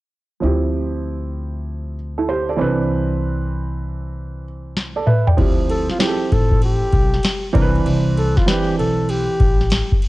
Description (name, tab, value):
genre	hip hop, jazz-hop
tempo	97 BPM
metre	4/4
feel	swing 66% on 16ths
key	D dorian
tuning	A4 = 440 Hz
part	warm baby grand piano	accompaniment	0.4-9.6 s	E3 to G5	-22 LUFS	right 4 dB	cassette tape
part	upright bass	bass	0.4-9.8 s	A1 to D2	-22 LUFS	left 1 dB	none
part	booming analog drum machine	drums	4.8-10.1 s	hi-hat, kick drum, ride cymbal, snare drum, toms	-18 LUFS	left 1 dB	vintage 12-bit sampler grit
part	breathy flugelhorn	melody	5.7-10.0 s	F4 to A4	-22 LUFS	left 1 dB	cassette tape
room	light reverb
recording	home recording on cassette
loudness	-16 LUFS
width	side -18 dB against mid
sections	0.4-5.4 A section; 5.4-10.1 B section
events	drum fill 4.8-5.4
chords	0.4 Dm11; 2.6 Cmaj9; 5.4 Dm11; 7.5 Cmaj9